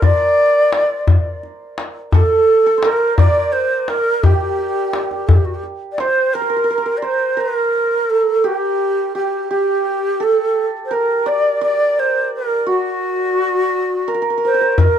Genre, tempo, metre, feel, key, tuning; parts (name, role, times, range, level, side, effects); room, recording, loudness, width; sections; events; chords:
Persian modal ensemble; 57 BPM (dotted quarters); 6/8; straight; A4 = 440 Hz
breathy bright low ney; melody; 0.0-15.0 s; F#4 to D5; -16 LUFS; right 1 dB
santur; second line; 0.0-15.0 s; F#4 to D5; -22 LUFS; right 2 dB
tombak; percussion; 0.0-6.2, 14.8-14.9 s; -14 LUFS; left 2 dB
moderate studio reverb, RT60 0.5 s; dark, warm production; -14 LUFS; side -9 dB against mid
0.0-6.3 A section; 6.3-15.0 B section